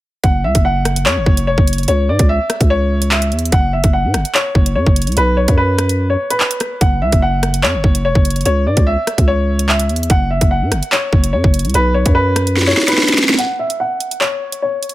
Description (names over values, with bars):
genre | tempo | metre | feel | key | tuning
hip hop, drill | 146 BPM | 4/4 | half-time | unclear | A4 = 440 Hz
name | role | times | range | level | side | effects
warm upright piano | melody | 0.2-14.9 s | B4 to F#5 | -18 LUFS | left 1 dB | low-pass filter, ping-pong delay
growling 808-style bass | bass | 0.2-12.7 s | E1 to A2 | -16 LUFS | equal | none
drill drum kit | drums | 0.2-14.9 s | handclaps, hi-hat, kick drum, rim click, snare drum | -14 LUFS | equal | overdrive
room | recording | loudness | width
little or no reverb | none | -12 LUFS | side -16 dB against mid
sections
0.2-13.4 A section; 13.4-14.9 B section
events
drum fill 12.6-13.4; break 13.4-14.9; filter sweep on upright piano 13.4-14.9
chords
0.2 F#5; 1.9 C#m; 3.5 F#5; 5.2 B5; 6.8 F#5; 8.5 C#m; 10.1 F#5; 11.7 B5; 13.4 N.C.